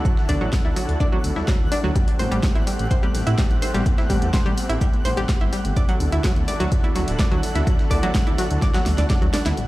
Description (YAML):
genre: progressive house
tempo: 126 BPM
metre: 4/4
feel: straight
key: unclear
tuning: A4 = 440 Hz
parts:
  - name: supersaw pad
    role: sustained chords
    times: 0.0-9.7 s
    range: D3 to A4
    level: -30 LUFS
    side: right 1 dB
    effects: vintage 12-bit sampler grit, sidechain pumping
  - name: analog pluck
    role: arpeggios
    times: 0.0-9.6 s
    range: F#3 to D5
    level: -26 LUFS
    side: equal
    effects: chorus, sidechain pumping, digital delay
  - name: congas and bongos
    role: percussion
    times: 0.0-9.7 s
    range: none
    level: -33 LUFS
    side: left 4 dB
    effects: sidechain pumping on perc
  - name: twinkling granular texture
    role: texture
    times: 0.0-9.7 s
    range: D5 to F#6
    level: -36 LUFS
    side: equal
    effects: built-in reverb, sidechain pumping
  - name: dusty soul sampler-style drum kit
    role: drums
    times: 0.1-9.6 s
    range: hi-hat, shaker, snare drum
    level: -39 LUFS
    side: equal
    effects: none
  - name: electronic kick drum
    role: drums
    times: 0.1-9.2 s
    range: none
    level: -20 LUFS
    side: equal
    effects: none
  - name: dark detuned saw bass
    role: bass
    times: 0.3-9.7 s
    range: D1 to A2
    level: -24 LUFS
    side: equal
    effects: sidechain pumping
  - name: deep house drum kit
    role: drums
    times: 0.3-9.7 s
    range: hi-hat, snare drum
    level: -31 LUFS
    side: equal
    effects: none
room: little or no reverb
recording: played on a big sound system in a bare room, stone room reverb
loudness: -18 LUFS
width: side -17 dB against mid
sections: 0.0-9.6 A section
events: drum fill 8.6-9.6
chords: 0.0 Dadd9; 2.0 Am7; 5.8 Dadd9